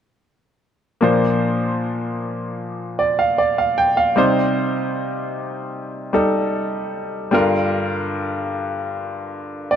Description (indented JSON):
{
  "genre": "pop",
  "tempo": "76 BPM",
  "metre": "4/4",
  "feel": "straight",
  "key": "Bb major",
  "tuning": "A4 = 440 Hz",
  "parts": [
    { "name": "bright grand piano", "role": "accompaniment", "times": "1.0-9.8 s", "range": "G2 to G5", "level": "-18 LUFS", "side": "equal", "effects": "none" }
  ],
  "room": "moderate plate reverb, RT60 3.1 s",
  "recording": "dark, warm production",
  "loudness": "-18 LUFS",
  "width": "side -9 dB against mid",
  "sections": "1.0-9.8 A section",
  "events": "none",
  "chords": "1.0 Bbadd9; 4.2 Cm; 7.3 Gm7"
}